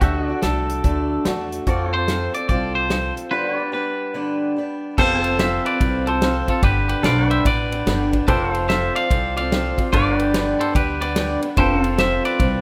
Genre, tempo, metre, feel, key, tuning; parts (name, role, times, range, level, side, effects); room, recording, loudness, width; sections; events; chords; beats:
honky-tonk and classic country; 145 BPM; 4/4; swing 64% on 8ths; A4 = 439 Hz
twangy electric guitar; melody; 0.0-12.6 s; F4 to F5; -25 LUFS; equal
picked swing-style acoustic guitar; accompaniment; 0.0-12.6 s; G2 to B4; -26 LUFS; equal
pedal steel guitar; sustained chords; 0.0-12.6 s; C4 to G5; -30 LUFS; equal
upright bass; bass; 0.0-12.6 s; F1 to F2; -27 LUFS; equal
natural country drum kit; drums; 0.0-12.5 s; crash cymbal, hi-hat, kick drum, ride cymbal, snare drum; -25 LUFS; equal
light reverb, small room reverb; rough home demo mix; -20 LUFS; mono
0.0-5.0 A section; 5.0-12.6 B section
break 3.3-5.0
0.0 D; 1.7 F; 3.3 G; 5.0 F; 6.6 G; 8.3 F; 9.9 G; 11.6 F
| 0.01 0.43 0.84 1.25 | 1.67 2.08 2.50 2.91 | 3.32 3.73 4.15 4.56 | 4.97 5.39 5.80 6.21 | 6.63 7.04 7.45 7.86 | 8.28 8.69 9.10 9.52 | 9.93 10.34 10.75 11.16 | 11.58 11.99 12.40